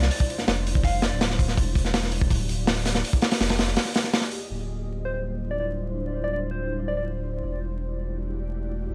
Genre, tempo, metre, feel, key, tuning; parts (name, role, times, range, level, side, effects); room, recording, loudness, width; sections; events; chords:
drum and bass, jungle; 164 BPM; 4/4; straight; A4 = 440 Hz
soft struck synth lead; melody; 0.0-1.2, 5.1-7.0 s; C5 to F5; -35 LUFS; equal; chorus, dub echo
ethereal airy pad; sustained chords; 0.0-8.9 s; G3 to D5; -37 LUFS; equal; ensemble chorus, built-in reverb
saturated sub bass; bass; 0.0-8.9 s; D1 to F1; -30 LUFS; equal
crunchy breakbeat drum kit; drums; 0.0-4.4 s; hi-hat, kick drum, snare drum; -25 LUFS; equal
light reverb, studio reverb; echo-heavy mix, vinyl crackle; -26 LUFS; mono
0.0-4.5 A section; 4.5-8.9 B section
0.0 Dm11; 1.6 Em11; 3.0 Fm11; 4.5 Dm11; 7.4 Em11